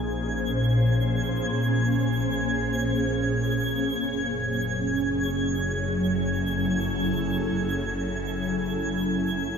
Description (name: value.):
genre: ambient.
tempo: free time.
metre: none.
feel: none.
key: unclear.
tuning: A4 = 440 Hz.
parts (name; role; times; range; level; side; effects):
ethereal airy pad; sustained chords; 0.0-9.6 s; Bb2 to C5; -25 LUFS; equal; ensemble chorus, built-in reverb, phaser.
rich chamber double bass section; bass; 0.0-9.6 s; Gb1 to Bb1; -30 LUFS; left 1 dB; none.
twinkling granular texture; texture; 0.0-9.6 s; Ab6; -31 LUFS; right 1 dB; built-in reverb.
room: wet lush hall reverb, RT60 2.8 s.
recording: none.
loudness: -23 LUFS.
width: side -6 dB against mid.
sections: 0.0-9.6 A section.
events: none.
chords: 0.0 Bbm7; 4.1 Gbm7.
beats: free time.